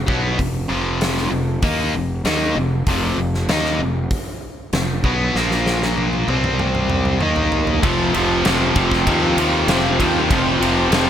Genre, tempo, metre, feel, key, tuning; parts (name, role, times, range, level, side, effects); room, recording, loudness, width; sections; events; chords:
hard rock; 97 BPM; 4/4; straight; A4 = 440 Hz
fuzz fingered electric bass; bass; 0.0-11.1 s; F1 to Eb2; -23 LUFS; equal; overdrive
biting overdriven guitar; riff; 0.1-11.1 s; F2 to Eb4; -20 LUFS; left 1 dB
huge arena drum kit; drums; 0.1-11.1 s; hi-hat, kick drum, ride cymbal, snare drum, toms; -22 LUFS; equal
sweeping resonant pad; sustained chords; 7.8-11.1 s; F4 to G5; -27 LUFS; right 1 dB; chorus
high-gain distorted guitar; riff; 7.8-11.1 s; F2 to F3; -20 LUFS; equal; distortion
light reverb, small room reverb; -16 LUFS; side -9 dB against mid
0.0-7.8 A section; 7.8-11.1 B section
drum fill 5.4-7.8
0.0 F5; 5.4 Bb5; 6.3 C5; 7.2 Eb5; 7.8 F5